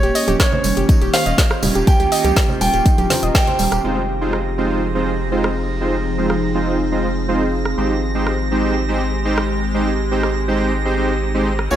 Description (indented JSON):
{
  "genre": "progressive house",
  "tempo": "122 BPM",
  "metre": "4/4",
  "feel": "straight",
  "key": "Ab major",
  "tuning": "A4 = 438 Hz",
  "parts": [
    { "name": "warm grand piano", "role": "melody", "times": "0.0-3.8, 11.7-11.8 s", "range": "Db5 to G5", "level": "-22 LUFS", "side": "right 2 dB", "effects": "vintage 12-bit sampler grit, sidechain pumping, dub echo" },
    { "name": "evolving wavetable pad", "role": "sustained chords", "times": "0.0-11.8 s", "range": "Eb3 to Ab4", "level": "-24 LUFS", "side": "equal", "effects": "phaser, built-in reverb, sidechain pumping" },
    { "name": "soft round pluck", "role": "arpeggios", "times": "0.0-3.8 s", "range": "G3 to Eb5", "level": "-22 LUFS", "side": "right 1 dB", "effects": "chorus, sidechain pumping, tape echo" },
    { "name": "round analog bass", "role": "bass", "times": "0.0-11.8 s", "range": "Eb1 to Db2", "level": "-23 LUFS", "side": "equal", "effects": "sidechain pumping" },
    { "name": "deep house drum kit", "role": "drums", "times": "0.0-11.7 s", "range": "hi-hat, rim click, snare drum", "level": "-22 LUFS", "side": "equal", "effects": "none" },
    { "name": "tambourine", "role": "percussion", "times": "0.0-3.8, 11.7-11.8 s", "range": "none", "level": "-30 LUFS", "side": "right 4 dB", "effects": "none" },
    { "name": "congas and bongos", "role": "percussion", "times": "0.3-3.6, 11.7-11.8 s", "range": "none", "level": "-26 LUFS", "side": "right 2 dB", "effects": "sidechain pumping on perc" },
    { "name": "electronic kick drum", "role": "drums", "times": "0.4-3.4 s", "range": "none", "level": "-15 LUFS", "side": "equal", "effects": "none" },
    { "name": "soft supersaw", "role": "stabs", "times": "3.8-11.8 s", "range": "Ab3 to Db5", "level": "-20 LUFS", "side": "right 2 dB", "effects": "sidechain pumping, tape echo" },
    { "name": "drifting glass-harmonics texture", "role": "texture", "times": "4.0-11.8 s", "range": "Bb6", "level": "-31 LUFS", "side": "right 6 dB", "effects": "chorus, built-in reverb, sidechain pumping" }
  ],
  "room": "light reverb",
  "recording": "none",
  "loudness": "-15 LUFS",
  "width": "side -11 dB against mid",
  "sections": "0.0-3.8 A section; 3.8-11.8 B section",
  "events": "filter sweep on ambient pad 0.0-3.8; band accent 3.3",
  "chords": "0.0 Eb7; 3.8 Fm7; 7.8 Abmaj7",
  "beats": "0.40 0.89 1.38 | 1.87 2.37 2.86 3.35 | 3.84 4.33 4.82 5.32 | 5.81 6.30 6.79 7.28 | 7.78 8.27 8.76 9.25 | 9.74 10.23 10.73 11.22 | 11.71"
}